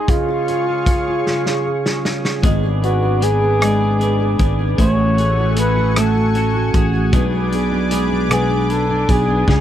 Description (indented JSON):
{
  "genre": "six-eight pop ballad",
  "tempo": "51 BPM (dotted quarters)",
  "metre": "6/8",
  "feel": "straight",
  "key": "unclear",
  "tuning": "A4 = 440 Hz",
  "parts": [
    { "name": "warm flugelhorn", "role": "melody", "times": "0.0-9.6 s", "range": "E#4 to C#5", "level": "-20 LUFS", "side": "equal", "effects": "none" },
    { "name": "fingerpicked steel-string acoustic guitar", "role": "accompaniment", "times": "0.0-9.6 s", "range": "B2 to B4", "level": "-21 LUFS", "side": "right 1 dB", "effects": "double-tracked left and right" },
    { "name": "lush unison pad", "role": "sustained chords", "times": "0.0-9.6 s", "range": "A3 to D6", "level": "-26 LUFS", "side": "equal", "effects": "chorus" },
    { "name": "loose indie drum kit", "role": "drums", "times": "0.1-9.6 s", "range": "hi-hat, kick drum, rim click, snare drum", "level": "-19 LUFS", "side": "equal", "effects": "none" },
    { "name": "twelve-string electric guitar", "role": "arpeggios", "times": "2.4-9.6 s", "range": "B2 to G#4", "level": "-24 LUFS", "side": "left 1 dB", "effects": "tape echo" },
    { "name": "sustaining fretless electric bass", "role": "bass", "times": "2.4-9.6 s", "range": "G#1 to C#2", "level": "-18 LUFS", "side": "equal", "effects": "ensemble chorus" }
  ],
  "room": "little or no reverb",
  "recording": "dry, close 1970s-style studio recording, faint mains hum",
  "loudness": "-14 LUFS",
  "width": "side -11 dB against mid",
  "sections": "0.0-9.6 A section",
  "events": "drum fill 1.3-2.4",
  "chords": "0.1 C#; 2.4 G#dim; 4.8 F#madd9/A; 7.1 G#dim/B"
}